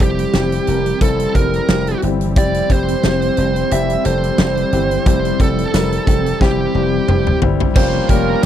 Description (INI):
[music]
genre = 1980s-style pop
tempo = 89 BPM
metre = 4/4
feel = swing 55% on 16ths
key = unclear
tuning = A4 = 441 Hz
[part]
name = bluesy overdriven lead guitar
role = melody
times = 0.0-8.4 s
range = G4 to E5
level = -20 LUFS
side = right 4 dB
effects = distortion, slapback echo
[part]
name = dark grand piano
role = accompaniment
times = 0.0-8.5 s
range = G3 to Bb4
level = -21 LUFS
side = left 8 dB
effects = none
[part]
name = granular cloud pad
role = sustained chords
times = 0.0-8.5 s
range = E3 to G5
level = -24 LUFS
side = right 1 dB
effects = built-in reverb
[part]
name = dry thumbed slap bass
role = bass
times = 0.0-8.5 s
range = F1 to G1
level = -20 LUFS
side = equal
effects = none
[part]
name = huge arena drum kit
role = drums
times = 0.0-8.5 s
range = crash cymbal, hi-hat, kick drum, snare drum, tambourine, toms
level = -17 LUFS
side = equal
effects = none
[part]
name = raw garage guitar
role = accompaniment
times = 7.7-8.5 s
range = Bb2 to Bb3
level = -27 LUFS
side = left 2 dB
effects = overdrive, wide subtle chorus
[part]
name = mellow horn section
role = stabs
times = 7.8-8.5 s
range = F3 to F4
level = -25 LUFS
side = right 16 dB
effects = none
[sound]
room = little or no reverb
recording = dry, close 1970s-style studio recording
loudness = -13 LUFS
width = side -10 dB against mid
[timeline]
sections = 0.0-7.8 A section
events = drum fill 6.4-7.8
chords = 0.0 C/F; 7.8 Bbm6/F